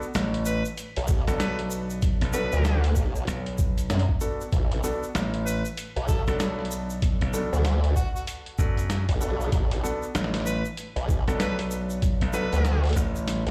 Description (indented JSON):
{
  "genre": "glitch hop",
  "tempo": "96 BPM",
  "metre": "4/4",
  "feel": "swing 61% on 16ths",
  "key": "B minor",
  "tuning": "A4 = 443 Hz",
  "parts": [
    { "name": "dark baby grand piano", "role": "stabs", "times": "0.0-13.5 s", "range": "B3 to A4", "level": "-36 LUFS", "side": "equal", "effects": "sidechain pumping, dub echo" },
    { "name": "egg shaker", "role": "percussion", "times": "0.0-13.4 s", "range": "none", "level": "-43 LUFS", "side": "equal", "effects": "none" },
    { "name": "slap bass", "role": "bass", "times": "0.1-13.4 s", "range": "A1 to F#2", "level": "-30 LUFS", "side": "equal", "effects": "none" },
    { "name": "boom bap sampler-style drum kit", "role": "drums", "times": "0.1-13.5 s", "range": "hi-hat, snare drum", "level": "-36 LUFS", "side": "equal", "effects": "none" },
    { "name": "overdriven harmonica", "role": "melody", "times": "0.5-12.8 s", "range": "F#4 to B4", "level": "-37 LUFS", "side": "equal", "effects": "dub echo" },
    { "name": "formant-sweep wobble bass", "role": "bass", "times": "1.0-13.5 s", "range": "B1 to F#2", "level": "-26 LUFS", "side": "equal", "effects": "chorus, overdrive" },
    { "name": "electronic kick drum", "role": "drums", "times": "1.1-13.1 s", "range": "none", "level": "-27 LUFS", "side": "equal", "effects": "none" }
  ],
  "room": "digital ambience",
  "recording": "played on a big sound system in a bare room, large studio reverb",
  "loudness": "-26 LUFS",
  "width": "mono",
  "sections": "0.0-13.5 A section",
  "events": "drum fill 13.3",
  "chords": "0.0 Bm7"
}